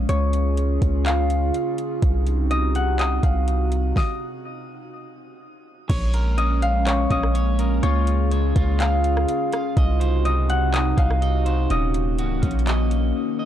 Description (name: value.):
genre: hip hop, atmospheric cloud-rap.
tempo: 124 BPM.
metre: 4/4.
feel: half-time.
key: Bb minor.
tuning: A4 = 441 Hz.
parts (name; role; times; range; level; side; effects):
concert harp; melody; 0.0-13.5 s; Db5 to Gb5; -27 LUFS; left 2 dB; tape echo.
warbly tape-like pad; sustained chords; 0.0-13.5 s; C3 to Ab4; -26 LUFS; equal; chorus, built-in reverb, sidechain pumping.
long sustained 808-style bass; bass; 0.0-13.1 s; Db1 to Db2; -21 LUFS; equal; none.
smooth R&B drum kit; drums; 0.1-13.0 s; crash cymbal, handclaps, hi-hat, kick drum, rim click, snare drum; -24 LUFS; equal; none.
electric guitar at the edge of break-up; arpeggios; 5.9-13.5 s; Db4 to F5; -31 LUFS; right 2 dB; tape echo.
room: digital ambience.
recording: dry, gritty hardware recording, transformer saturation.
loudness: -19 LUFS.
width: side -11 dB against mid.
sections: 0.0-5.9 A section; 5.9-13.5 B section.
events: stop 4.0-5.9; break 13.2.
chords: 0.1 Db; 2.0 Cdim; 4.0 N.C.; 5.9 Bbm7; 7.8 Db; 9.8 Cdim; 11.7 Ebm7.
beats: | 0.09 0.57 1.06 1.54 | 2.02 2.51 2.99 3.48 | 3.96 4.45 4.93 5.41 | 5.90 6.38 6.86 7.35 | 7.83 8.32 8.80 9.28 | 9.77 10.25 10.73 11.22 | 11.70 12.19 12.67 13.15.